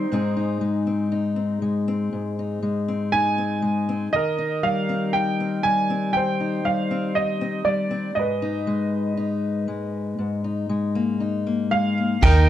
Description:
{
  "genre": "acoustic folk-pop ballad",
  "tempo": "60 BPM",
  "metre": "4/4",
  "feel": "straight",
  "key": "unclear",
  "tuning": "A4 = 439 Hz",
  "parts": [
    { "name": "clear upright piano", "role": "melody", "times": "0.0-12.5 s", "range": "Eb4 to Ab5", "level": "-24 LUFS", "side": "right 3 dB", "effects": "none" },
    { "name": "fingerpicked acoustic archtop guitar", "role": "accompaniment", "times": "0.0-12.5 s", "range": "Ab2 to Ab4", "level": "-23 LUFS", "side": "left 3 dB", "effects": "none" },
    { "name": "pedal steel guitar", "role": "second line", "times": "12.2-12.5 s", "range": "Eb4", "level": "-24 LUFS", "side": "right 4 dB", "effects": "none" },
    { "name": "woody fretless electric bass", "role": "bass", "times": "12.2-12.5 s", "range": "Eb2", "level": "-14 LUFS", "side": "right 1 dB", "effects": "none" },
    { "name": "soft brush drum kit", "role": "drums", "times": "12.2-12.5 s", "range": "crash cymbal, kick drum", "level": "-18 LUFS", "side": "right 1 dB", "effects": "none" }
  ],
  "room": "light reverb",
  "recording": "dark, warm production",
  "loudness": "-21 LUFS",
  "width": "side -12 dB against mid",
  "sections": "0.0-12.2 A section",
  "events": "none",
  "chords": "0.1 Ab; 4.1 Eb6; 8.2 Abmadd9"
}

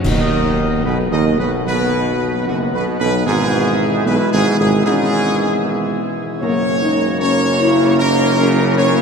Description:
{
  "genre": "classical, ceremonial fanfare",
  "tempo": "76 BPM",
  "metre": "4/4",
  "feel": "straight",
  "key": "B major",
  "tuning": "A4 = 438 Hz",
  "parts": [
    { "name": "clear trumpet section", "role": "melody", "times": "0.0-9.0 s", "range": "F#4 to D#5", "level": "-20 LUFS", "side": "right 1 dB", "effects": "none" },
    { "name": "bright trombone section", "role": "sustained chords", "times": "0.0-9.0 s", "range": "F#2 to A#3", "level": "-23 LUFS", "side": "right 2 dB", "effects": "none" },
    { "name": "chamber organ, principal chorus", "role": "sustained chords", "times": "0.0-9.0 s", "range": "B2 to A#4", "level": "-24 LUFS", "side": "equal", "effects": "none" },
    { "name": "mellow tuba", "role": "bass", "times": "0.0-9.0 s", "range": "F#1 to D#2", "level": "-18 LUFS", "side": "right 2 dB", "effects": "none" },
    { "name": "clash cymbals and concert bass drum", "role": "percussion", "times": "0.0-1.6 s", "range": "none", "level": "-26 LUFS", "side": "left 1 dB", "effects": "none" },
    { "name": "timpani", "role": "percussion", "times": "0.0-1.2 s", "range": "B2", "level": "-28 LUFS", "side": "equal", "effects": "none" },
    { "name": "dark French horn section", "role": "sustained chords", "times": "1.7-9.0 s", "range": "G#3 to E4", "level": "-20 LUFS", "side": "left 4 dB", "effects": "none" }
  ],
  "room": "wet cathedral reverb, RT60 5.2 s",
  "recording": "minimal, uncompressed stereo recording",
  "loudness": "-14 LUFS",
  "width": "side -6 dB against mid",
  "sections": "0.0-9.0 A section",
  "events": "band accent 0.0-0.9",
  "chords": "0.0 B; 3.3 E/G#; 6.4 F#"
}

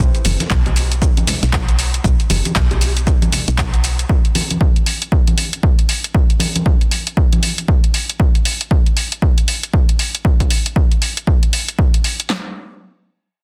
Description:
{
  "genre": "deep house",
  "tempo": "117 BPM",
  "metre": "4/4",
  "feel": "swing 60% on 16ths",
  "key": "unclear",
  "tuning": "A4 = 440 Hz",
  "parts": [
    { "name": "woody FM bass", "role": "bass", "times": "0.0-4.0 s", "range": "F#1 to B1", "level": "-20 LUFS", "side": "equal", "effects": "sidechain pumping" },
    { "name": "punchy analog drum machine", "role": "drums", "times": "0.0-12.3 s", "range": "handclaps, hi-hat, shaker", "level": "-23 LUFS", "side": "equal", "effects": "none" },
    { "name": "dusty soul sampler-style drum kit", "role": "drums", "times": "0.2-4.0 s", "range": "hi-hat, snare drum", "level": "-33 LUFS", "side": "equal", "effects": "none" },
    { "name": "congas and bongos", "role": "percussion", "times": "0.3-7.4 s", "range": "none", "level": "-26 LUFS", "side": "equal", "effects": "none" },
    { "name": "punchy analog drum machine", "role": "drums", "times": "0.5-12.4 s", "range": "handclaps, kick drum, snare drum", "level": "-17 LUFS", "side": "equal", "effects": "none" }
  ],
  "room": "digital ambience",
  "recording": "dense, heavily limited modern master",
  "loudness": "-16 LUFS",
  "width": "mono",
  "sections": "0.0-12.3 A section; 12.3-13.4 B section",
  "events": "none",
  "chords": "none"
}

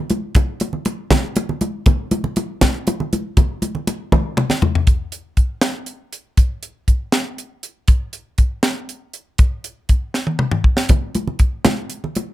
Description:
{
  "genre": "jazz",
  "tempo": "80 BPM (dotted quarters)",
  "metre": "6/8",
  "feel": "straight",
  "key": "none",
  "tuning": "none",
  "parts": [
    { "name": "tight funk drum kit", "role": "drums", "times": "0.1-12.3 s", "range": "hi-hat, kick drum, snare drum, toms", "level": "-16 LUFS", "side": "equal", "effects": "none" },
    { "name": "congas", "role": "percussion", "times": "0.1-4.7, 10.9-12.3 s", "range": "none", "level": "-20 LUFS", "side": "right 1 dB", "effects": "none" }
  ],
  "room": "light reverb",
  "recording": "none",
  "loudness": "-17 LUFS",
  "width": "side -15 dB against mid",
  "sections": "0.0-4.9 A section; 4.9-12.3 B section",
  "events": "drum fill 4.1-4.9, 10.2-10.9",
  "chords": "none"
}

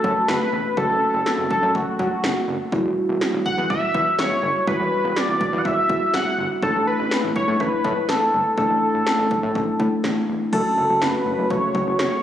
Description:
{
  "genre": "synth-pop",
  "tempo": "123 BPM",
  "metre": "4/4",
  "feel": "straight",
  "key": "unclear",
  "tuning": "A4 = 440 Hz",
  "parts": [
    { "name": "octave-doubled lead", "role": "melody", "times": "0.0-12.2 s", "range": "F#4 to F#5", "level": "-21 LUFS", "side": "equal", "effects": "chorus, tape echo" },
    { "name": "muted felt-like synth keys", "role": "accompaniment", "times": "0.0-12.2 s", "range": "G3 to F#4", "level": "-26 LUFS", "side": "right 1 dB", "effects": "chorus" },
    { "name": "fat analog bass", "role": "bass", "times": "0.0-12.1 s", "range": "E1 to A2", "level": "-26 LUFS", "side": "equal", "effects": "none" },
    { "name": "80s electronic pad drums", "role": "drums", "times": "0.0-12.1 s", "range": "crash cymbal, kick drum, snare drum", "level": "-26 LUFS", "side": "equal", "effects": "none" },
    { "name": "warm analog pad", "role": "sustained chords", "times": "10.5-12.2 s", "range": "C#3 to F#4", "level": "-28 LUFS", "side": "equal", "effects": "chorus" }
  ],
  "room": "moderate lush hall reverb, RT60 2.3 s",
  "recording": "recorded on a phone in the room, club reverb, compression",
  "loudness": "-18 LUFS",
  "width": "side -10 dB against mid",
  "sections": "0.0-10.5 A section; 10.5-12.2 B section",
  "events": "none",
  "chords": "0.0 F#m; 2.7 Emadd9; 6.6 Asus4; 10.5 F#m"
}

